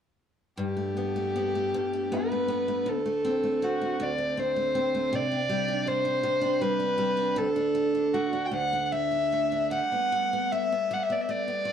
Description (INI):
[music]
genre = celtic folk, Celtic slow air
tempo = 79 BPM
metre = 3/4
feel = rubato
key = G major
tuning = A4 = 439 Hz
[part]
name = dark fiddle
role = melody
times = 0.6-11.7 s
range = F#4 to G5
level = -26 LUFS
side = equal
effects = slapback echo
[part]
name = picked steel-string acoustic guitar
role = accompaniment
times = 0.6-11.7 s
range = D2 to D4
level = -30 LUFS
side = right 1 dB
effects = none
[sound]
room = light reverb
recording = dry, close 1970s-style studio recording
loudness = -25 LUFS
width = side -8 dB against mid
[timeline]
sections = 0.6-11.7 A section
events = none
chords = 0.6 Gadd9; 2.9 D5; 5.1 Csus2; 7.4 D5; 9.7 Gadd9